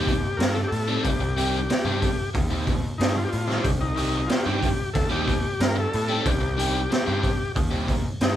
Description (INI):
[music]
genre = psychedelic rock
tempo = 92 BPM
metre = 4/4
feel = straight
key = C dorian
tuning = A4 = 440 Hz
[part]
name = combo organ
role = melody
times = 0.0-8.4 s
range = Eb4 to Bb4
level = -29 LUFS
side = left 3 dB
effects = none
[part]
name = overdriven semi-hollow guitar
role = riff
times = 0.0-7.9 s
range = Eb3 to G4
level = -28 LUFS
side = equal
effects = phaser
[part]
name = fuzz picked electric bass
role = bass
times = 0.0-8.4 s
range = C2 to A2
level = -28 LUFS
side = equal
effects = overdrive
[part]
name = raw garage drum kit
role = drums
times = 0.1-8.4 s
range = hi-hat, kick drum, snare drum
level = -25 LUFS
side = equal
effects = none
[sound]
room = light reverb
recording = band playing live in one room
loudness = -22 LUFS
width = side -11 dB against mid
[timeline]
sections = 0.0-8.4 A section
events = none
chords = 0.0 Cm